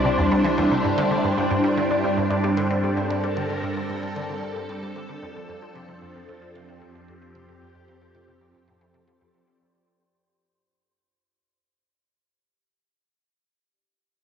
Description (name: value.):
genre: ambient, sequencer-driven space music.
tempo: 113 BPM.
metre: 4/4.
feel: straight.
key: unclear.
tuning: A4 = 440 Hz.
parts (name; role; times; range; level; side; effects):
phased string machine; sustained chords; 0.0-9.5 s; C3 to Bb4; -24 LUFS; equal; ensemble chorus, phaser.
concert harp; arpeggios; 0.0-11.7 s; A3 to D5; -32 LUFS; left 2 dB; auto-pan, tape echo.
resonant blip pluck; riff; 0.0-9.3 s; E2 to G3; -29 LUFS; equal; phaser, tape echo.
analog drone; bass; 0.0-9.4 s; C2 to G2; -34 LUFS; equal; chorus.
wind-like tuned noise texture; texture; 0.0-9.5 s; C5; -30 LUFS; right 2 dB; built-in reverb.
room: wet lush hall reverb, RT60 2.4 s.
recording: home recording on cassette, nothing above 8.0 kHz.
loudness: -20 LUFS.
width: side -8 dB against mid.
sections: 0.0-9.5 A section.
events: fade-out on synth arpeggio sound 0.0-9.5; fade-out on harp 0.0-9.5; fade-out 0.0-9.5.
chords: 0.0 C; 1.0 Gm; 5.2 F.